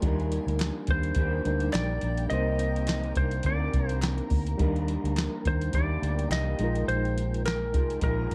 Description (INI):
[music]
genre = indie pop, bedroom pop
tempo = 105 BPM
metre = 4/4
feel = swing 55% on 16ths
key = Eb major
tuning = A4 = 440 Hz
[part]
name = electric guitar through a small old amp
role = accompaniment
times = 0.0-8.3 s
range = Bb2 to Eb4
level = -38 LUFS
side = equal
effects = lush chorus, warbly pitch drift
[part]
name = reed electric piano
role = accompaniment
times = 0.0-8.3 s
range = G3 to C5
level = -38 LUFS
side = equal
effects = overdrive, fast tremolo, cassette tape
[part]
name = granular cloud pad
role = sustained chords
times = 0.0-8.3 s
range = Bb4 to Bb5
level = -44 LUFS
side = equal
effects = built-in reverb
[part]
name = vintage muted fingered electric bass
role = bass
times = 0.0-8.3 s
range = Ab1 to Eb2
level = -31 LUFS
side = equal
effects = none
[part]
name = soft vintage rhythm box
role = drums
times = 0.0-8.3 s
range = hi-hat, kick drum, snare drum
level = -32 LUFS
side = equal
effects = none
[part]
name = group handclap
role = percussion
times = 0.6-7.6 s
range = none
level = -45 LUFS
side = equal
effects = none
[part]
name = clean lap steel guitar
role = melody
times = 0.9-8.3 s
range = Bb4 to Eb5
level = -35 LUFS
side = equal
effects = subtle chorus, analog delay
[sound]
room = light reverb, digital ambience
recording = dark, warm production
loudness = -28 LUFS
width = mono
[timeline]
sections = 0.0-8.3 A section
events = none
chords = 0.0 Ebmaj7; 2.3 Cm9; 4.6 Ebmaj7; 6.6 Bb7sus4